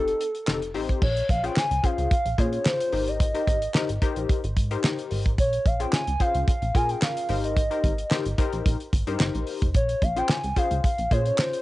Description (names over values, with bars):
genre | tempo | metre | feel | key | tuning
early-eighties boogie funk | 110 BPM | 4/4 | straight | Bb dorian | A4 = 439 Hz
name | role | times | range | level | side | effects
hollow clarinet-like synth lead | melody | 0.0-11.6 s | A4 to Ab5 | -27 LUFS | equal | chorus
funky polysynth comp | accompaniment | 0.0-11.6 s | C4 to C5 | -31 LUFS | left 6 dB | chorus, cassette tape
plucky analog bass | bass | 0.0-11.3 s | F1 to Bb2 | -28 LUFS | equal | none
damped 70s drum kit | drums | 0.1-11.6 s | crash cymbal, handclaps, hi-hat, kick drum, snare drum | -24 LUFS | equal | none
room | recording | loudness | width
light reverb, small room reverb | home recording on cassette, nothing above 10.9 kHz | -22 LUFS | side -17 dB against mid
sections
0.0-1.0 A section; 1.0-11.6 B section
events
none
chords
0.0 F7; 1.0 Bbm7; 2.9 Abmaj9; 5.4 Bbm7; 7.3 Abmaj9; 9.7 Bbm7